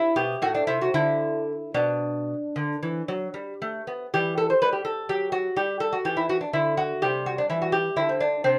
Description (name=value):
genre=classical, baroque-style dance for lute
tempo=73-85 BPM (dotted quarters)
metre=12/8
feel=rubato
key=unclear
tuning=A4 = 441 Hz
part: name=lute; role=solo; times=0.0-8.6 s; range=A2 to C5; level=-25 LUFS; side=equal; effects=none
room=light reverb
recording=close, detailed microphones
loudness=-26 LUFS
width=mono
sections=0.0-4.1 A section; 4.1-8.6 B section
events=none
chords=0.0 Am; 0.9 Bmadd11; 2.6 N.C.; 4.1 Em; 7.0 C